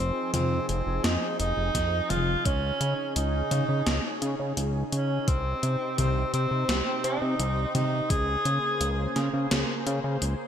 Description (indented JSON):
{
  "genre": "synthwave",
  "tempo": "85 BPM",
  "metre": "4/4",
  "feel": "straight",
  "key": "F minor",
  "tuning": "A4 = 439 Hz",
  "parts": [
    { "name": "warm tenor saxophone", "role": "melody", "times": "0.0-9.5 s", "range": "C4 to Ab4", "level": "-29 LUFS", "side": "right 1 dB", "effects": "ping-pong delay" },
    { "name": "lush unison pad", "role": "sustained chords", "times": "0.0-10.5 s", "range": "C3 to C5", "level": "-34 LUFS", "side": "equal", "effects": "chorus, sidechain pumping" },
    { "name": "fat analog bass", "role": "bass", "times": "0.0-10.4 s", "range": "F1 to Db3", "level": "-28 LUFS", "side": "equal", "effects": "sidechain pumping" },
    { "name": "gated 80s digital drum machine", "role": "drums", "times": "0.3-10.4 s", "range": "hi-hat, snare drum, toms", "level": "-31 LUFS", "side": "left 1 dB", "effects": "gated reverb, gated reverb snare" },
    { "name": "electronic kick drum", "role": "drums", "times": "1.7-8.2 s", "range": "none", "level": "-27 LUFS", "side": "equal", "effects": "none" }
  ],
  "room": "moderate plate reverb, RT60 2.7 s",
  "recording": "bright 1980s-style digital production",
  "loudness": "-24 LUFS",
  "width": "side -9 dB against mid",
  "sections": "0.0-10.5 A section",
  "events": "none",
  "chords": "0.0 Fm7; 2.5 Dbsus2; 5.3 Cm; 8.1 Bbm7/Db",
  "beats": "0.34 1.04 1.75 | 2.46 3.16 3.87 4.57 | 5.28 5.98 6.69 7.40 | 8.10 8.81 9.51 10.22"
}